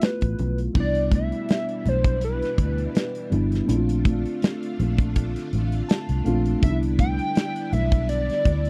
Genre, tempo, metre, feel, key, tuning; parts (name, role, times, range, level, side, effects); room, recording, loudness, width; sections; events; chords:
lush 1970s-style soul; 82 BPM; 4/4; swing 54% on 16ths; C major; A4 = 440 Hz
hollow square lead; melody; 0.0-8.7 s; B4 to G5; -30 LUFS; equal; chorus, phaser
mellow tine electric piano; accompaniment; 0.0-8.7 s; G3 to A5; -30 LUFS; equal
modern studio drum kit; drums; 0.0-8.7 s; crash cymbal, hi-hat, kick drum, snare drum; -23 LUFS; equal
congas; percussion; 0.0-8.7 s; -35 LUFS; equal
vintage muted fingered electric bass; bass; 0.2-8.7 s; G1 to D2; -27 LUFS; equal
string machine, violins; sustained chords; 0.8-8.7 s; B2 to F4; -38 LUFS; equal; ensemble chorus
light reverb; dry, close 1970s-style studio recording; -23 LUFS; mono
0.8-8.7 A section
tine electric piano fill 5.5-6.6
0.0 G13 (rootless); 0.8 Cmaj9; 3.7 Bbmaj7; 6.6 Cmaj9